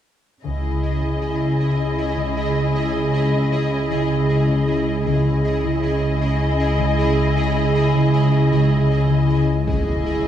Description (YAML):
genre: cinematic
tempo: 52 BPM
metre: 4/4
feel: straight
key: C# minor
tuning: A4 = 440 Hz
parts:
  - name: muted symphonic violin section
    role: melody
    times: 0.4-10.3 s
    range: D#5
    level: -28 LUFS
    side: left 4 dB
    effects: none
  - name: muted symphonic viola section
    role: accompaniment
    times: 0.4-10.3 s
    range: E4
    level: -28 LUFS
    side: equal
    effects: none
  - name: pulsing gated texture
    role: sustained chords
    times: 0.4-10.3 s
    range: E4 to D#5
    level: -25 LUFS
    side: right 1 dB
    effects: chorus, built-in reverb
  - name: concert harp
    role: riff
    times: 0.4-10.3 s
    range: C#3 to C#4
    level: -22 LUFS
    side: right 1 dB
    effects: none
  - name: muted symphonic cello section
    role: bass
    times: 0.4-10.3 s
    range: C#3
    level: -23 LUFS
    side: equal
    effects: none
  - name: muted symphonic double bass section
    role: bass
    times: 0.4-10.3 s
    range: C#2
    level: -26 LUFS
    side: equal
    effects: none
  - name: organ-like drone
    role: drone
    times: 1.2-10.3 s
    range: C#2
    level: -26 LUFS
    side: equal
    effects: ensemble chorus, built-in reverb
  - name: muted symphonic violin section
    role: second line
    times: 0.5-10.3 s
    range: G#4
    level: -31 LUFS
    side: left 2 dB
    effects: none
  - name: impact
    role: sound effects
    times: 9.7-10.3 s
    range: none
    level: -25 LUFS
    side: equal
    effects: none
room: wet recital hall reverb, RT60 1.4 s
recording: heard from further back in the room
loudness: -17 LUFS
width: side -10 dB against mid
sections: 0.4-9.7 A section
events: impact 9.7-10.3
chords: 0.4 C#madd9